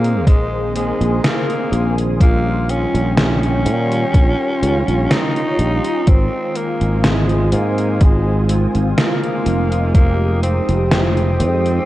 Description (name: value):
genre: vaporwave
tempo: 62 BPM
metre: 4/4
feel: straight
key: Ab major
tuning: A4 = 439 Hz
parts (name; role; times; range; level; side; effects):
- raspy tenor saxophone; melody; 0.0-11.9 s; Ab3 to Eb4; -22 LUFS; equal; tape echo
- mellow synth brass; accompaniment; 0.0-11.9 s; Eb3 to Ab4; -22 LUFS; equal; phaser, ensemble chorus
- lush unison pad; sustained chords; 0.0-11.9 s; Ab3 to Eb6; -28 LUFS; equal; chorus
- sustaining fretless electric bass; bass; 0.0-11.8 s; F1 to Bb2; -17 LUFS; equal; none
- gated 80s digital drum machine; drums; 0.0-11.8 s; hi-hat, snare drum; -19 LUFS; equal; gated reverb, gated reverb snare, overdrive
- electronic kick drum; drums; 0.3-10.2 s; none; -11 LUFS; equal; overdrive
room: light reverb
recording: cassette tape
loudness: -14 LUFS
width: side -15 dB against mid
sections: 0.0-11.9 A section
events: none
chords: 0.0 Bb9sus4; 2.2 Eb9/Bb; 6.1 Ab6; 9.9 Fm9